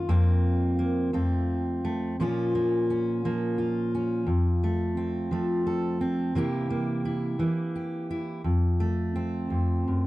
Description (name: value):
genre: folk, solo fingerstyle acoustic guitar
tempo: 57 BPM (dotted quarters)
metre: 6/8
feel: rubato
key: Bb harmonic minor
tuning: A4 = 440 Hz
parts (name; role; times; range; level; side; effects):
- fingerpicked steel-string acoustic guitar; solo; 0.0-10.1 s; F2 to A4; -24 LUFS; equal; none
room: light reverb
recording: dry, close 1970s-style studio recording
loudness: -24 LUFS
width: side -17 dB against mid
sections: 0.0-2.2 A section; 2.2-10.1 B section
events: none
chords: 0.1 Fsus4; 1.1 F; 2.2 Bbm; 4.3 F; 6.4 C7; 8.5 F